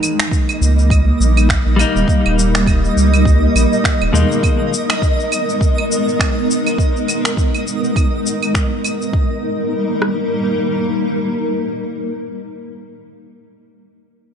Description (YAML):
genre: organic downtempo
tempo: 102 BPM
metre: 4/4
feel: swing 56% on 16ths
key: unclear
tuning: A4 = 440 Hz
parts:
  - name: granular cloud pad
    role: sustained chords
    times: 0.0-12.2 s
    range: G3 to Bb4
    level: -19 LUFS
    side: equal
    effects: built-in reverb, sidechain pumping
  - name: concert harp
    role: arpeggios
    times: 0.0-2.1 s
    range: Bb3 to Bb4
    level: -26 LUFS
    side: right 2 dB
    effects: tape echo
  - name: electronic claves, cabasa and finger snaps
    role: drums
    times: 0.0-9.1 s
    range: none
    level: -21 LUFS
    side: right 1 dB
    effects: small room ambience
  - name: twinkling granular texture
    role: texture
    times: 0.6-9.1 s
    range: Eb5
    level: -26 LUFS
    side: right 1 dB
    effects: built-in reverb
  - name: afro-pop drum kit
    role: drums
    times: 0.3-10.2 s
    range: kick drum, rim click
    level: -16 LUFS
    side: equal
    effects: small room ambience
  - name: warm sub bass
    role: bass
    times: 0.6-4.2 s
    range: Eb1 to Eb2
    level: -14 LUFS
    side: equal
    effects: none
  - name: semi-hollow electric guitar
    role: accompaniment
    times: 1.8-4.7 s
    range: Cb3 to Eb4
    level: -20 LUFS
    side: left 4 dB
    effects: wide subtle chorus, sidechain pumping, tape echo
room: light reverb, digital ambience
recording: nothing above 10.5 kHz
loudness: -13 LUFS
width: side -8 dB against mid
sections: 0.0-9.1 A section; 9.1-11.5 B section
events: none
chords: 0.0 Eb; 4.4 Abmadd9; 9.1 Eb